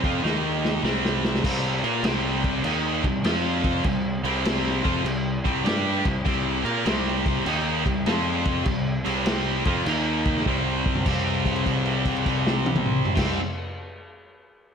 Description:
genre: blues rock power trio and southern rock.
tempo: 100 BPM.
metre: 4/4.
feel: swing 66% on 8ths.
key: unclear.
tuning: A4 = 440 Hz.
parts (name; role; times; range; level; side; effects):
distorted electric guitar; riff; 0.0-13.4 s; C3 to Bb4; -24 LUFS; equal; overdrive.
fuzz picked electric bass; bass; 0.0-13.4 s; C2 to Bb2; -28 LUFS; equal; overdrive.
vintage drum kit; drums; 0.0-13.3 s; crash cymbal, kick drum, snare drum, toms; -26 LUFS; equal; none.
room: light reverb, studio ambience.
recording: none.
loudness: -21 LUFS.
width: side -7 dB against mid.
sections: 0.0-1.4 A section; 1.4-11.1 A section; 11.1-13.4 B section.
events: drum fill 0.2-1.4, 10.5-11.1; held note 11.1-13.1.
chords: 0.2 Eb5; 0.8 C5; 3.2 F5; 3.9 C5; 8.1 F5; 8.7 C5; 9.9 Eb5; 10.5 C5.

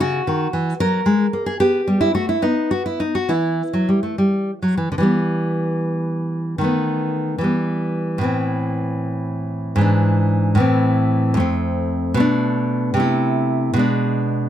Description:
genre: classical, baroque-style dance for nylon-string guitar.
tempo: 75 BPM (dotted quarters).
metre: 6/8.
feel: rubato.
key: E minor, A minor from 11.4 s.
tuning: A4 = 440 Hz.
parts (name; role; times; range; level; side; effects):
nylon-string guitar; solo; 0.0-14.5 s; F2 to A#4; -17 LUFS; equal; none.
room: light reverb.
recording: none.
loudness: -17 LUFS.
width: side -11 dB against mid.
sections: 0.0-5.1 A section; 5.1-14.5 B section.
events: none.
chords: 0.0 F#7/C#; 1.6 Gmaj13; 2.4 N.C.; 3.3 Em; 8.3 Am; 9.9 E7/G#; 10.6 Am; 11.4 F; 12.2 Bm7; 13.0 Am/C; 13.8 G#dim/B.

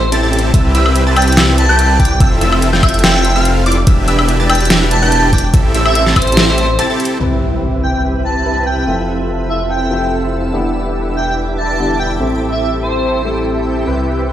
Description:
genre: future bass.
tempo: 144 BPM.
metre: 4/4.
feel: swing 53% on 16ths, half-time.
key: C major.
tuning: A4 = 440 Hz.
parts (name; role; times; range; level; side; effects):
airy dreamy lead; melody; 0.0-13.4 s; C5 to A5; -19 LUFS; equal; chorus, sidechain pumping, dub echo.
wide detuned saw bass; bass; 0.0-14.3 s; E1 to C2; -16 LUFS; equal; chorus, sidechain pumping.
wide unison pluck; arpeggios; 0.1-7.2 s; D6 to A6; -21 LUFS; equal; phaser, vintage 12-bit sampler grit, sidechain pumping, digital delay.
dense compressed supersaw; riff; 0.1-14.3 s; C4 to A5; -17 LUFS; right 1 dB; sidechain pumping, low-pass filter.
pop drum kit; drums; 0.1-7.1 s; hi-hat, snare drum, woodblock; -15 LUFS; equal; overdrive, low-pass filter on hats, low-pass filter on snare, low-pass filter on perc, low-pass filter on room.
electronic kick drum; drums; 0.5-6.3 s; none; -11 LUFS; equal; overdrive.
warm baby grand piano; accompaniment; 7.2-14.3 s; C3 to E5; -22 LUFS; left 2 dB; sidechain pumping, digital delay.
shimmering ambient pad; sustained chords; 8.0-14.3 s; G4 to E6; -29 LUFS; right 2 dB; chorus, built-in reverb, sidechain pumping.
impact; sound effects; 7.2-8.9 s; none; -23 LUFS; equal; none.
room: light reverb.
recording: played on a big sound system in a bare room, stone room reverb.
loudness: -11 LUFS.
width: side -11 dB against mid.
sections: 0.0-7.2 A section; 7.2-14.3 B section.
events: drop 0.0-7.2; break 6.8-7.2; impact 7.2-8.9.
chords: 0.0 Am7; 0.5 Cmaj7; 2.2 Fmaj7; 3.9 Em7; 5.5 Am7; 7.2 Cmaj7; 8.9 Fmaj7; 10.5 Em7; 12.2 Am7.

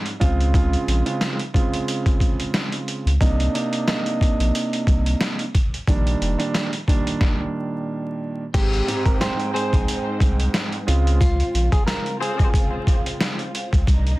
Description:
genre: hip hop, boom-bap hip-hop.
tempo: 90 BPM.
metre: 4/4.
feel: swing 55% on 16ths.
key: unclear.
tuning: A4 = 440 Hz.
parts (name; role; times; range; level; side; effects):
dark baby grand piano; accompaniment; 0.0-11.2 s; Ab2 to G5; -24 LUFS; right 2 dB; cassette tape, high-pass filter, low-pass filter.
trip hop sampler-style drum kit; drums; 0.1-14.2 s; crash cymbal, hi-hat, kick drum, snare drum; -21 LUFS; equal; none.
saturated sub bass; bass; 0.2-14.1 s; F1 to Db2; -20 LUFS; equal; none.
clean electric guitar; melody; 8.5-13.8 s; F4 to C5; -29 LUFS; left 1 dB; high-pass filter, low-pass filter, tape echo.
dark studio string section; sustained chords; 8.5-14.2 s; C3 to G5; -32 LUFS; right 1 dB; high-pass filter, low-pass filter.
warm horn section; stabs; 9.5-12.5 s; C4 to C5; -32 LUFS; left 1 dB; high-pass filter, low-pass filter, tape echo.
room: light reverb.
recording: dense, heavily limited modern master, vinyl crackle.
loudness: -19 LUFS.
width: side -19 dB against mid.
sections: 0.0-8.5 A section; 8.5-14.2 B section.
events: stop 7.2-8.5.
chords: 0.2 Dbmaj7; 3.2 Cm9; 5.9 Ebmaj7; 8.5 Abmaj7; 10.9 Dbmaj7.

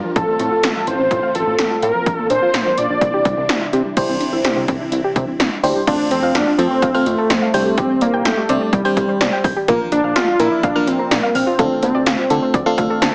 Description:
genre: synth-pop.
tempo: 126 BPM.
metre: 4/4.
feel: straight.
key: F major.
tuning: A4 = 443 Hz.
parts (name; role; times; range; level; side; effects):
string machine, cellos; sustained chords; 0.0-5.9 s; C3 to Bb4; -29 LUFS; equal; ensemble chorus.
soft round pluck; arpeggios; 0.0-13.1 s; F3 to G6; -26 LUFS; equal; chorus, digital delay.
unison lead; melody; 0.2-12.7 s; G3 to D5; -20 LUFS; equal; digital delay.
chorused synth bass; bass; 0.2-13.1 s; A1 to F3; -26 LUFS; equal; none.
80s electronic pad drums; drums; 0.2-13.1 s; crash cymbal, hi-hat, kick drum, snare drum; -23 LUFS; equal; none.
FM electric piano; accompaniment; 4.0-13.1 s; F3 to A5; -23 LUFS; equal; chorus.
room: moderate digital room reverb, RT60 1.0 s, digital ambience.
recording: heavily compressed radio sound, multiband compression, small speaker sound.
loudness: -17 LUFS.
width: mono.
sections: 0.0-4.0 A section; 4.0-5.9 B section; 5.9-13.1 C section.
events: FM electric piano fill 12.5-13.1.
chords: 0.2 F/A; 2.1 Bb; 3.0 Cadd9; 5.9 F; 7.5 Csus2; 9.7 Bb; 11.6 Dm7.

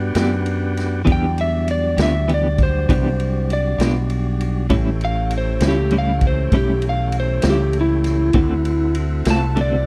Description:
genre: slow blues.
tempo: 66 BPM (dotted quarters).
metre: 12/8.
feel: straight.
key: unclear.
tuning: A4 = 440 Hz.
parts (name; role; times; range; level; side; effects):
tonewheel organ; sustained chords; 0.0-9.9 s; E3 to G4; -29 LUFS; equal; slow rotary speaker.
mellow fretless electric bass; bass; 0.0-9.9 s; A1 to G2; -23 LUFS; equal; subtle chorus.
clean electric guitar; accompaniment; 0.1-9.8 s; A2 to G4; -23 LUFS; equal; tremolo.
swinging big-band drum kit; drums; 0.1-9.7 s; kick drum, ride cymbal, snare drum; -24 LUFS; equal; none.
electric slide guitar; melody; 1.1-9.9 s; E4 to A5; -24 LUFS; equal; none.
room: little or no reverb.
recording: none.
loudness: -19 LUFS.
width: mono.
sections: 0.0-9.9 A section.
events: electric slide guitar solo 0.0-9.9.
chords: 0.0 Em7; 4.7 A7; 8.3 D7.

